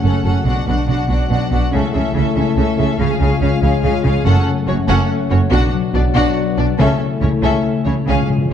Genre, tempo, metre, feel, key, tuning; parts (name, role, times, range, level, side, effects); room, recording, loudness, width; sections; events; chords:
cinematic, heroic adventure film score; 142 BPM; 3/4; straight; A4 = 440 Hz
warm symphonic violin section; melody; 0.0-8.5 s; C#5 to F#5; -25 LUFS; left 2 dB
rich symphonic violin section; second line; 0.0-8.3 s; D4 to A4; -26 LUFS; left 2 dB
rich studio viola section; accompaniment; 0.0-8.5 s; C#4 to D4; -25 LUFS; equal
mellow French horn section; sustained chords; 0.0-8.5 s; F#3 to E#4; -22 LUFS; left 5 dB
concert harp; arpeggios; 0.0-8.5 s; F#2 to D5; -22 LUFS; left 7 dB
clear studio cello section; bass; 0.0-8.5 s; F#2 to C#3; -21 LUFS; right 2 dB
rich symphonic double bass section; bass; 0.0-8.2 s; F#1 to C#2; -18 LUFS; right 3 dB
timpani; percussion; 8.1-8.5 s; C#3; -19 LUFS; right 1 dB
moderate scoring stage reverb, RT60 1.8 s; dark, warm production; -14 LUFS; side -9 dB against mid
0.0-8.5 A section
build-up 0.0-8.5; timpani fill 8.1-8.5
0.5 Bm; 1.7 A/C#; 3.0 C#; 4.3 F#m; 5.5 Bm; 6.8 A/C#